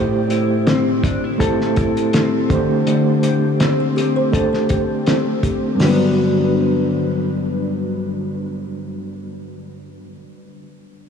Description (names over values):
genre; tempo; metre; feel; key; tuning
indie pop, bedroom pop; 82 BPM; 4/4; swing 55% on 16ths; G major; A4 = 441 Hz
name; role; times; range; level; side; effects
mellow electric guitar; accompaniment; 0.0-10.3 s; G2 to A4; -19 LUFS; left 5 dB; analog chorus, warbly pitch drift, low-pass filter
mellow reed electric piano; accompaniment; 0.0-11.1 s; G3 to C5; -21 LUFS; right 4 dB; fast tremolo, cassette tape, low-pass filter
cloth-damped thuddy drum kit; drums; 0.3-6.0 s; hi-hat, kick drum, snare drum; -22 LUFS; equal; none
kalimba; second line; 3.8-5.6 s; G4 to D5; -28 LUFS; right 2 dB; ensemble chorus, tape echo
room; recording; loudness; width
wet huge ambient reverb, RT60 7.9 s; dreamy mix soaked in reverb; -15 LUFS; side -7 dB against mid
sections
0.0-5.8 A section; 5.8-8.7 B section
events
filter sweep 0.0-5.8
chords
0.0 Am7; 2.5 D7sus4; 5.8 Gmaj7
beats
0.67 1.40 2.13 | 2.87 3.60 4.33 5.06 | 5.80 6.53 7.26 8.00